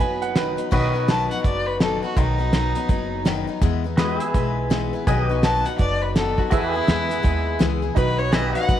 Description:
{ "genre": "honky-tonk and classic country", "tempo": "166 BPM", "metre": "4/4", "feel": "swing 62% on 8ths", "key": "B major", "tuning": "A4 = 440 Hz", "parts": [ { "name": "clear fiddle", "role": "melody", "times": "0.0-3.2, 5.4-8.8 s", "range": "D#4 to A5", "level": "-26 LUFS", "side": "left 1 dB", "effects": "tape echo" }, { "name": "bright upright piano", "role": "second line", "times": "0.0-0.6 s", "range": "B4 to G#5", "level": "-27 LUFS", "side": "right 11 dB", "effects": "none" }, { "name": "picked steel-string acoustic guitar", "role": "accompaniment", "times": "0.0-8.8 s", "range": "B2 to B4", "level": "-27 LUFS", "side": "left 9 dB", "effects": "none" }, { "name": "pedal steel guitar", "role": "sustained chords", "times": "0.0-8.8 s", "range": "F#4 to E5", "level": "-28 LUFS", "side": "right 1 dB", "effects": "lush chorus" }, { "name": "upright bass", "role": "bass", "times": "0.0-8.8 s", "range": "F#1 to E2", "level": "-26 LUFS", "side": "right 1 dB", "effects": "none" }, { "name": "cloth-damped thuddy drum kit", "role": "drums", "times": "0.2-8.8 s", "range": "crash cymbal, hi-hat, kick drum, snare drum", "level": "-22 LUFS", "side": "right 1 dB", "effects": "none" }, { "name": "honky-tonk upright piano", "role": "accompaniment", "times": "6.5-8.8 s", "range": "D#4 to B4", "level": "-29 LUFS", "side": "right 12 dB", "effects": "none" } ], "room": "light reverb", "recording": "1960s-style stereo with parts hard left and right", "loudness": "-19 LUFS", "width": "side -11 dB against mid", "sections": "0.7-8.8 A section", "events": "fiddle solo 0.7-8.8", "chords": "0.0 B; 3.6 E; 5.1 B; 6.5 E; 8.0 B" }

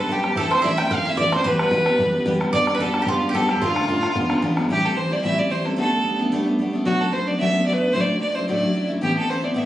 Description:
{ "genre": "celtic folk, Celtic reel", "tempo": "222 BPM", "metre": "4/4", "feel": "swing 54% on 8ths", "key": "A dorian from 4.7 s", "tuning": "A4 = 440 Hz", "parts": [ { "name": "rich fiddle", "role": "melody", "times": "0.0-9.7 s", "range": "F4 to G5", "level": "-22 LUFS", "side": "equal", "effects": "none" }, { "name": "bowl-back mandolin", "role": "second line", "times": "0.0-4.4 s", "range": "F4 to G5", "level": "-24 LUFS", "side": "right 3 dB", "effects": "none" }, { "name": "picked steel-string acoustic guitar", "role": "accompaniment", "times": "0.0-9.7 s", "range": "D2 to G4", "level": "-22 LUFS", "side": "equal", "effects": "none" }, { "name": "bodhran", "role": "percussion", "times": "0.1-4.7 s", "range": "none", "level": "-26 LUFS", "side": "left 1 dB", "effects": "none" } ], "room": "wet recital hall reverb, RT60 1.7 s", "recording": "recorded on a phone in the room, studio reverb, compression, nothing above 11.0 kHz", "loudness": "-18 LUFS", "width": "side -13 dB against mid", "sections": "0.0-4.7 A section; 4.7-9.7 B section", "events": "none", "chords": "0.4 Am; 1.5 Em; 2.5 G; 3.6 Dm; 4.2 E7; 4.7 Am7; 5.8 Gadd9; 6.9 Bm7; 7.9 Dadd9; 9.0 Amadd9" }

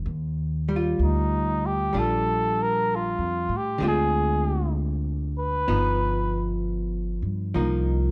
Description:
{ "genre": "jazz ballad", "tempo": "64 BPM", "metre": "4/4", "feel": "swing 66% on 8ths", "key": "unclear", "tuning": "A4 = 440 Hz", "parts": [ { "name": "archtop guitar, miked and amplified", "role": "accompaniment", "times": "0.0-8.1 s", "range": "D3 to F4", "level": "-31 LUFS", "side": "equal", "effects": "none" }, { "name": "upright bass", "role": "bass", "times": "0.1-8.1 s", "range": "G1 to A2", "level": "-29 LUFS", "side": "equal", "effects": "none" }, { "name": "warm flugelhorn", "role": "melody", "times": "1.0-6.6 s", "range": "Eb4 to Cb5", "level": "-28 LUFS", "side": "equal", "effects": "plate reverb" } ], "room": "light reverb", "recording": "dark, warm production", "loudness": "-25 LUFS", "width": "mono", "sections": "0.0-8.1 A section", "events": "none", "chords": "0.0 Ebmaj9; 3.8 Dm7b5; 5.7 Gaug7; 7.5 Cm7" }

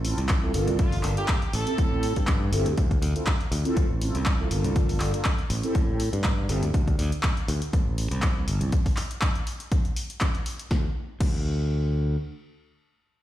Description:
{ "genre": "filtered disco house", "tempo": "121 BPM", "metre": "4/4", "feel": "swing 54% on 16ths", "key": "D minor", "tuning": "A4 = 443 Hz", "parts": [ { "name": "mellow synth brass", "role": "accompaniment", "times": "0.0-6.6 s", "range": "Bb3 to A4", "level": "-30 LUFS", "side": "right 1 dB", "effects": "chorus, phaser, sidechain pumping" }, { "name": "modern bright fingered electric bass", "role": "bass", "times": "0.0-12.2 s", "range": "G1 to A2", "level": "-26 LUFS", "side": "equal", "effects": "sidechain pumping" }, { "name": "punchy analog drum machine", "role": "drums", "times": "0.0-11.4 s", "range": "crash cymbal, handclaps, hi-hat, snare drum", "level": "-32 LUFS", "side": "equal", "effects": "overdrive" }, { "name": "electronic kick drum", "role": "drums", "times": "0.3-11.4 s", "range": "none", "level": "-25 LUFS", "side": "equal", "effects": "overdrive" }, { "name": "clear horn section", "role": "melody", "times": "0.8-2.2 s", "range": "F4 to A4", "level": "-33 LUFS", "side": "right 2 dB", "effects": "sidechain pumping, tape echo" } ], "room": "little or no reverb", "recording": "played on a big sound system in a bare room, stone room reverb", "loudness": "-23 LUFS", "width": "side -13 dB against mid", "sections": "0.0-10.7 A section; 10.7-13.2 B section", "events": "drop 0.0-10.7", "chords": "0.0 Dm7 (rootless); 0.5 Gm7; 1.5 Am7; 2.8 Dm7; 4.5 Gm7; 5.5 Am7; 6.7 D5; 8.5 Gsus4; 9.5 N.C." }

